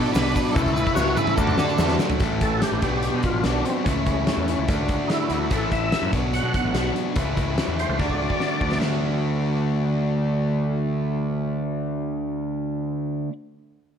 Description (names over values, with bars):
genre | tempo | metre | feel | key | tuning
classic rock | 145 BPM | 4/4 | straight | D major | A4 = 440 Hz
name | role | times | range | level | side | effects
overdriven tonewheel organ | melody | 0.0-8.8 s | C4 to F#5 | -28 LUFS | equal | chorus vibrato, slow rotary speaker
octave-fuzz lead guitar | second line | 0.0-1.9 s | A4 to C#5 | -30 LUFS | right 4 dB | distortion
overdriven electric guitar | riff | 0.0-13.3 s | A2 to A4 | -27 LUFS | left 9 dB | none
sludgy distorted guitar | riff | 0.0-13.3 s | A2 to D4 | -28 LUFS | right 10 dB | overdrive
growling picked electric bass | bass | 0.0-13.3 s | A1 to D3 | -27 LUFS | equal | overdrive
tube shaker | percussion | 0.1-2.2 s | none | -45 LUFS | left 7 dB | none
big rock drum kit | drums | 0.2-8.9 s | hi-hat, kick drum, snare drum, splash cymbal, toms | -25 LUFS | equal | none
room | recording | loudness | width
light reverb | none | -21 LUFS | side -8 dB against mid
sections
0.0-2.2 A section; 2.2-8.8 B section; 8.8-12.1 C section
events
drum fill 0.6-2.2, 8.0-8.8; tonewheel organ solo 2.2-8.8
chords
0.0 Bm; 0.6 A/C#; 1.4 D; 2.2 A; 2.8 Bm; 3.9 A/C#; 4.7 D; 5.5 A; 6.1 Bm; 7.2 A/C#; 8.0 D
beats
0.15 | 0.56 0.97 1.38 1.79 | 2.20 2.62 3.03 3.44 | 3.85 4.26 4.67 5.09 | 5.50 5.91 6.33 6.74 | 7.15 7.57 7.98 8.39 | 8.81 9.22 9.63 10.05 | 10.46 10.88 11.29 11.70